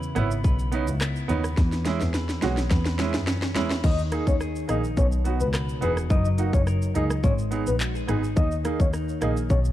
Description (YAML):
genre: dancehall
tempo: 106 BPM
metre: 4/4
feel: straight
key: unclear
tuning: A4 = 440 Hz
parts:
  - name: clean electric guitar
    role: arpeggios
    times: 0.0-9.7 s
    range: B2 to B4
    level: -32 LUFS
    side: left 2 dB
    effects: none
  - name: island pop drum kit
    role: drums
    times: 0.0-9.7 s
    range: crash cymbal, handclaps, hi-hat, kick drum, rim click, shaker, snare drum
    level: -25 LUFS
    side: equal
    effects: none
  - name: warm grand piano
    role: accompaniment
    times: 0.2-9.3 s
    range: G#3 to G#4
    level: -31 LUFS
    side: right 7 dB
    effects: none
  - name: clear double bass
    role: bass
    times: 0.2-9.7 s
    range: E1 to F#2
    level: -26 LUFS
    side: equal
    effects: none
  - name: soft octave-layered synth lead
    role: melody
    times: 3.8-9.6 s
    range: G#4 to D#5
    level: -30 LUFS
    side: left 3 dB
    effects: chorus, tremolo, digital delay
room: digital ambience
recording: dark, warm production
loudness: -22 LUFS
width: side -13 dB against mid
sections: 0.0-3.8 A section; 3.8-9.7 B section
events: drum fill 1.6-3.8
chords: 0.0 C#m7; 1.6 E6; 3.8 D#sus4; 5.0 B; 6.1 F#6; 7.2 G#m; 8.4 D#sus4